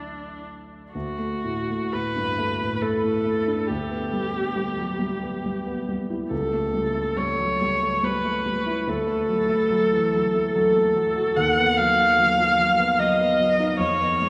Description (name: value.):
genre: classical, romantic duo for viola and grand piano.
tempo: 58-75 BPM.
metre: 3/4.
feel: rubato.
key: D major.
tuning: A4 = 440 Hz.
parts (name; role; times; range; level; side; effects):
rich viola; melody; 0.0-14.3 s; D4 to F#5; -24 LUFS; equal; none.
warm grand piano; accompaniment; 0.0-14.3 s; C#2 to F#4; -29 LUFS; equal; none.
room: wet cathedral reverb, RT60 5.2 s.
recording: recorded in a church or concert hall.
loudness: -23 LUFS.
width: mono.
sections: 0.9-14.3 A section.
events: none.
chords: 0.0 D; 3.7 Em7/D (rootless); 6.3 A7/C#; 8.9 D; 11.4 B/D#.